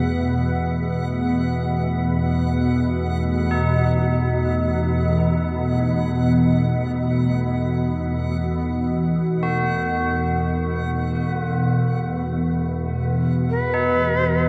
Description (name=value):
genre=ambient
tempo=free time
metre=none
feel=none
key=unclear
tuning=A4 = 441 Hz
part: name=deep dark ambient pad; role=sustained chords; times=0.1-14.5 s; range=E3 to D#4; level=-34 LUFS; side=equal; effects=none
part: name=organ-like drone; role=drone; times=0.0-14.5 s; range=E2 to B2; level=-22 LUFS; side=equal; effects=ensemble chorus, built-in reverb
part: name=backwards swelling texture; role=texture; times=0.0-14.5 s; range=F#5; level=-39 LUFS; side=equal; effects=built-in reverb
part: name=tubular bells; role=arpeggios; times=3.5-14.5 s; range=D#4 to F#4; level=-30 LUFS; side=equal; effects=diffuse ambient delay
part: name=bright reedy shakuhachi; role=melody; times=13.5-14.5 s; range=B4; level=-23 LUFS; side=equal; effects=none
room=wet huge ambient reverb, RT60 7.5 s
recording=faint mains hum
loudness=-21 LUFS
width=mono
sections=0.0-14.5 A section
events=fade-out on synth texture 0.0-14.5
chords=0.0 B/E